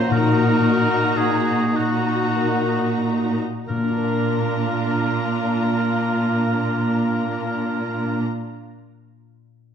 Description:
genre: classical.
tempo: 29-39 BPM (dotted quarters).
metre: 6/8.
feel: rubato.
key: unclear.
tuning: A4 = 439 Hz.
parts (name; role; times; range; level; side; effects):
warm studio violin section; melody; 0.0-8.2 s; Bb5; -32 LUFS; left 2 dB; none.
clear oboe; second line; 0.0-8.2 s; Gb4 to C5; -26 LUFS; right 1 dB; none.
dark studio violin section; second line; 0.0-8.2 s; F4 to Gb4; -27 LUFS; left 1 dB; none.
rich studio viola section; accompaniment; 0.0-8.2 s; D4 to Eb4; -27 LUFS; left 1 dB; none.
concert harp; arpeggios; 0.0-8.8 s; Bb2 to F5; -27 LUFS; left 7 dB; none.
rich studio cello section; bass; 0.0-8.2 s; Bb2; -22 LUFS; right 2 dB; none.
room: moderate scoring stage reverb, RT60 1.5 s.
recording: dark, warm production.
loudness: -18 LUFS.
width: side -8 dB against mid.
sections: 0.0-3.7 A section; 3.7-7.5 B section.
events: slowing down 0.0-3.7.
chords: 0.1 Ebm/Bb; 3.7 Bb.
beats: | 0.12 1.75 | 3.70 5.57.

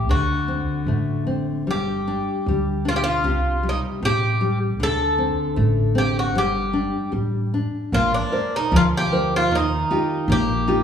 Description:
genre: fado-style ballad.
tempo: 77 BPM.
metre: 2/4.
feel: rubato.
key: G minor.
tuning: A4 = 439 Hz.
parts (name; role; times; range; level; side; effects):
Irish bouzouki; melody; 0.0-10.8 s; D4 to A4; -23 LUFS; equal; none.
nylon-string guitar; accompaniment; 0.0-10.8 s; C3 to D5; -24 LUFS; left 2 dB; none.
upright bass; bass; 0.0-10.8 s; G1 to Eb2; -24 LUFS; right 1 dB; none.
room: wet recital hall reverb, RT60 1.5 s.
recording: recorded in a church or concert hall, small room ambience.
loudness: -19 LUFS.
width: side -8 dB against mid.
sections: 0.0-7.9 A section; 7.9-10.8 B section.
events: none.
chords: 0.1 D7; 1.7 G5; 3.3 C5; 4.8 D5; 6.3 G5; 7.9 Bbadd9; 9.5 Ebadd9.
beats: | 0.09 0.87 | 1.67 2.47 | 3.25 4.03 | 4.80 5.57 | 6.34 7.13 | 7.93 8.72 | 9.51 10.29.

